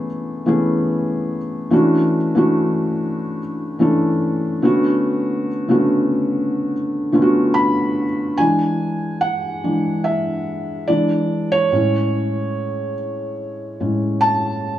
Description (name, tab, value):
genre	R&B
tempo	72 BPM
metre	4/4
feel	swing 54% on 16ths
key	unclear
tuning	A4 = 439 Hz
part	felt-muted upright piano	solo	0.0-14.8 s	A2 to B5	-17 LUFS	equal	none
room	light reverb, small room ambience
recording	none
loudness	-17 LUFS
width	side -12 dB against mid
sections	0.0-8.4 A section; 8.4-14.8 B section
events	felt piano solo 8.4-14.8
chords	0.0 Amaj7; 1.7 Dmaj7; 4.6 Bm7; 8.4 E7; 11.7 Amaj7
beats	0.05 0.88 | 1.71 2.55 3.38 4.21 | 5.05 5.88 6.71 7.55 | 8.38 9.21 10.05 10.88 | 11.71 12.55 13.38 14.21